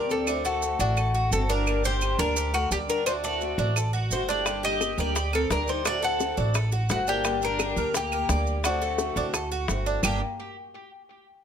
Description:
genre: latin, Cuban son and guajira.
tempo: 172 BPM.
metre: 4/4.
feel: straight.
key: G harmonic minor.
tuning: A4 = 441 Hz.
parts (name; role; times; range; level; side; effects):
Cuban tres; melody; 0.0-10.2 s; F#4 to F#5; -28 LUFS; left 2 dB; tape echo.
dark chamber violin section; second line; 0.0-10.2 s; A3 to A4; -34 LUFS; equal; none.
picked old ladder-braced acoustic guitar; accompaniment; 0.0-10.2 s; G2 to G4; -35 LUFS; left 2 dB; none.
Cuban tres; arpeggios; 0.0-10.2 s; G3 to D5; -32 LUFS; right 5 dB; none.
upright bass; bass; 0.0-10.2 s; G1 to D2; -29 LUFS; right 1 dB; none.
maracas; percussion; 0.1-10.1 s; none; -35 LUFS; right 6 dB; none.
claves; percussion; 0.3-10.1 s; none; -32 LUFS; right 4 dB; none.
bongos; percussion; 4.5-10.1 s; none; -33 LUFS; left 5 dB; none.
room: light reverb.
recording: close, detailed microphones.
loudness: -23 LUFS.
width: side -8 dB against mid.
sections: 0.0-10.0 A section; 10.0-11.4 B section.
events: none.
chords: 0.3 D7; 1.7 Gm; 3.1 D7; 4.5 Gm; 5.9 D7; 7.2 Gm; 8.6 D7; 10.0 G5.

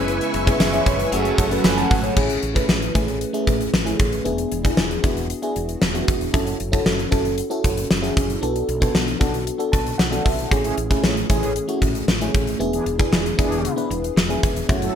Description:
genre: 1980s-style pop.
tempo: 115 BPM.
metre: 4/4.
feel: straight.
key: unclear.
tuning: A4 = 440 Hz.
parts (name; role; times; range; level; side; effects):
FM electric piano with soft pad layer; accompaniment; 0.0-15.0 s; A3 to B5; -23 LUFS; equal; chorus, phaser.
crunchy overdriven guitar; accompaniment; 0.0-2.7 s; C#3 to F#4; -30 LUFS; right 4 dB; lush chorus.
soft string machine; sustained chords; 0.0-2.2 s; A3 to C#6; -27 LUFS; equal; ensemble chorus.
mellow synth brass; stabs; 0.0-2.1, 10.6-14.9 s; E3 to B4; -28 LUFS; right 1 dB; chorus.
woody fretless electric bass; bass; 0.0-14.9 s; E1 to B1; -28 LUFS; equal; none.
gated 80s drum kit; drums; 0.1-14.9 s; crash cymbal, hi-hat, kick drum, snare drum, tambourine; -21 LUFS; equal; gated reverb.
room: moderate plate reverb, RT60 1.4 s, studio ambience.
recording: bright 1980s-style digital production.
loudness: -18 LUFS.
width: side -8 dB against mid.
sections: 0.0-2.2 A section; 2.2-15.0 B section.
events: FM electric piano fill 9.5-10.5.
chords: 0.0 C#m7/F#; 1.1 F#madd9; 2.2 Amaj7; 4.3 E7; 6.3 F#m7; 8.4 Bm7; 10.5 Amaj7; 12.6 E7.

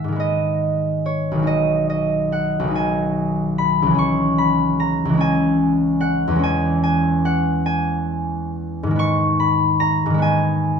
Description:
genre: classical, solo harp piece.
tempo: 48 BPM (dotted quarters).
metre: 6/8.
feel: rubato.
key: unclear.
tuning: A4 = 440 Hz.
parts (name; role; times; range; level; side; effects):
concert harp; solo; 0.0-10.8 s; B1 to C#6; -17 LUFS; equal; none.
room: light reverb.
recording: minimal, uncompressed stereo recording.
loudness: -17 LUFS.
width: side -6 dB against mid.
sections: 0.0-10.8 A section.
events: none.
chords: 0.0 G#m; 1.5 G#m/B; 4.0 C#m; 6.5 C#m/E; 9.0 G#m.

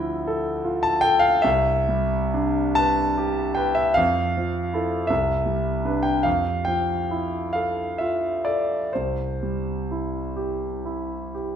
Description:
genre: classical, impressionist solo piano.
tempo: 40-55 BPM (dotted quarters).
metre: 6/8.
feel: rubato.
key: C major.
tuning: A4 = 442 Hz.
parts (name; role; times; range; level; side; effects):
clear concert grand piano; solo; 0.0-11.6 s; C2 to A5; -21 LUFS; equal; none.
room: wet recital hall reverb, RT60 1.5 s.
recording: minimal, uncompressed stereo recording.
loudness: -21 LUFS.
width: side -8 dB against mid.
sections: 0.0-11.6 A section.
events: none.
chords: 0.0 Dmadd9; 1.4 Cmaj9; 4.0 Fmaj7; 5.1 Cmaj9; 6.3 Fmaj7; 8.9 C.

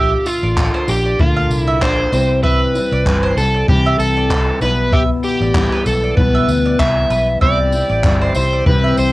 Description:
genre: acoustic pop.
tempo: 96 BPM.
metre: 4/4.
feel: swing 55% on 16ths.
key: C major.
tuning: A4 = 439 Hz.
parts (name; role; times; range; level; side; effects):
overdriven slide guitar; melody; 0.0-9.1 s; F4 to E5; -18 LUFS; equal; cassette tape.
fingerpicked steel-string acoustic guitar; accompaniment; 0.0-9.1 s; Bb2 to F4; -20 LUFS; left 2 dB; cassette tape.
mandolin; arpeggios; 0.0-9.0 s; B4 to F5; -23 LUFS; right 4 dB; cassette tape, analog delay.
vintage muted fingered electric bass; bass; 0.0-9.1 s; G1 to C3; -19 LUFS; equal; none.
jazz brush drum kit; drums; 0.3-9.1 s; handclaps, kick drum, tambourine; -18 LUFS; equal; cassette tape.
tonewheel organ; sustained chords; 7.4-9.1 s; G4 to G5; -28 LUFS; right 1 dB; slow rotary speaker, cassette tape.
room: little or no reverb.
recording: home recording on cassette.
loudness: -13 LUFS.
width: side -18 dB against mid.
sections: 0.0-9.1 A section.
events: none.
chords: 0.0 Bb; 2.1 C; 4.6 Em; 7.4 C.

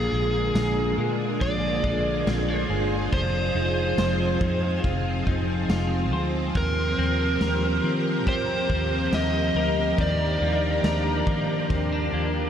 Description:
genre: dream pop.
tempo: 70 BPM.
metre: 4/4.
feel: straight.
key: C minor.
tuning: A4 = 444 Hz.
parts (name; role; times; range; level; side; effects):
overdriven slide guitar; melody; 0.0-12.5 s; Ab4 to Eb5; -28 LUFS; equal; analog delay.
string machine, full ensemble; sustained chords; 0.0-12.5 s; D3 to Bb4; -27 LUFS; equal; ensemble chorus.
clean electric guitar; arpeggios; 0.0-12.5 s; Bb2 to C5; -32 LUFS; left 2 dB; analog chorus, analog delay.
vintage muted fingered electric bass; bass; 0.0-12.5 s; F1 to Eb3; -28 LUFS; equal; none.
raw garage drum kit; drums; 0.6-11.9 s; kick drum, ride cymbal, snare drum, tambourine; -31 LUFS; equal; none.
room: wet huge ambient reverb, RT60 8.2 s.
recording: dreamy mix soaked in reverb.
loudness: -22 LUFS.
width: side -9 dB against mid.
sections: 0.0-12.5 A section.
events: none.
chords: 0.0 Bb7; 3.1 Fm7; 6.6 Cm7/Eb; 10.0 Ebmaj7.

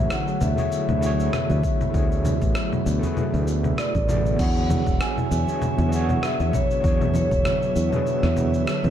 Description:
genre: sunset chillout.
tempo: 98 BPM.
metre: 4/4.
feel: swing 55% on 16ths.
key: unclear.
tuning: A4 = 440 Hz.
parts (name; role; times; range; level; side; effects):
vibraphone with medium mallets; melody; 0.0-8.9 s; C#5 to G#5; -27 LUFS; equal; tape echo.
overdriven tine electric piano; accompaniment; 0.0-8.9 s; A3 to D5; -30 LUFS; moving between left 3 dB and right 4 dB; medium tremolo, auto-pan, digital delay.
ethereal airy pad; sustained chords; 0.0-8.9 s; D3 to C#5; -29 LUFS; equal; ensemble chorus, built-in reverb.
modern bright fingered electric bass; bass; 0.0-8.9 s; E1 to E2; -23 LUFS; equal; none.
dusty soul sampler-style drum kit; drums; 0.1-8.9 s; cabasa, congas, crash cymbal, rim click; -28 LUFS; equal; none.
congas; percussion; 0.6-8.9 s; none; -30 LUFS; right 1 dB; none.
electronic kick drum; drums; 1.6-7.4 s; none; -25 LUFS; equal; overdrive.
drifting glass-harmonics texture; texture; 4.7-8.9 s; E5; -38 LUFS; right 6 dB; chorus, built-in reverb.
room: light reverb, digital ambience.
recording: dark, warm production.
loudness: -20 LUFS.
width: side -10 dB against mid.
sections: 0.0-4.4 A section; 4.4-8.9 B section.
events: none.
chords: 0.0 Dmaj9#11; 4.4 E13.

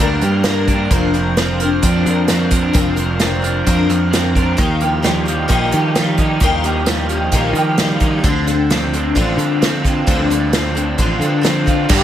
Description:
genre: folk rock and heartland rock.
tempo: 131 BPM.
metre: 4/4.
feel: straight.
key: unclear.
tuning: A4 = 440 Hz.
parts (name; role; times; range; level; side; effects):
picked twelve-string acoustic guitar; accompaniment; 0.0-12.0 s; G2 to Bb4; -18 LUFS; left 3 dB; analog chorus.
crunchy overdriven guitar; riff; 0.0-12.0 s; G2 to G4; -20 LUFS; right 3 dB; none.
picked electric bass; bass; 0.0-12.0 s; F1 to Eb3; -19 LUFS; equal; none.
unplugged drum kit; drums; 0.2-12.0 s; crash cymbal, hi-hat, kick drum, snare drum; -18 LUFS; equal; none.
tonewheel organ; sustained chords; 11.9-12.0 s; G4 to Bb5; -22 LUFS; right 2 dB; slow rotary speaker, chorus vibrato.
tambourine; percussion; 11.9-12.0 s; none; -26 LUFS; right 9 dB; none.
room: light reverb, small room ambience.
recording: none.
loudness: -13 LUFS.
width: side -11 dB against mid.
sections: 0.0-11.9 A section.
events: none.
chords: 0.0 Gm; 0.9 Bbadd9/F; 4.6 Ebadd9; 8.2 Dm7.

